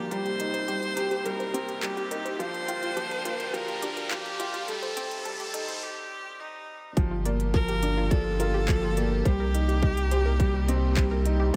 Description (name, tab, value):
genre	piano and strings electronica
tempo	105 BPM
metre	4/4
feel	straight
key	G minor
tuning	A4 = 440 Hz
part	bright viola	melody	0.0-11.3 s	Eb4 to C5	-35 LUFS	equal	digital delay
part	rich chamber string section	sustained chords	0.0-11.6 s	C3 to G4	-40 LUFS	equal	sidechain pumping
part	warm upright piano	riff	0.0-11.6 s	F3 to G4	-34 LUFS	equal	digital delay
part	riser	sound effects	0.5-5.8 s	none	-41 LUFS	equal	none
part	analog pluck	arpeggios	0.1-11.6 s	F4 to Bb5	-40 LUFS	equal	chorus, sidechain pumping, digital delay
part	organic electronic drum kit	drums	0.1-11.6 s	handclaps, hi-hat	-39 LUFS	equal	overdrive, high-pass filter on hats, high-pass filter on snare, high-pass filter on room
part	round analog bass	bass	7.0-11.6 s	G1 to C2	-29 LUFS	equal	tube saturation, sidechain pumping
part	electronic kick drum	drums	7.0-11.6 s	none	-26 LUFS	equal	overdrive
room	light reverb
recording	high-pass filter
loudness	-28 LUFS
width	mono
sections	0.0-7.0 A section; 7.0-11.6 B section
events	build-up 0.0-7.0; filter sweep on synth arpeggio sound 0.0-7.0; filter sweep 0.0-7.0; riser 0.5-5.8; break 5.8-7.0; drop 7.0-11.6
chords	0.1 Cm7; 2.4 Gm7; 4.7 Am7b5; 7.0 Gm7; 9.3 Cm7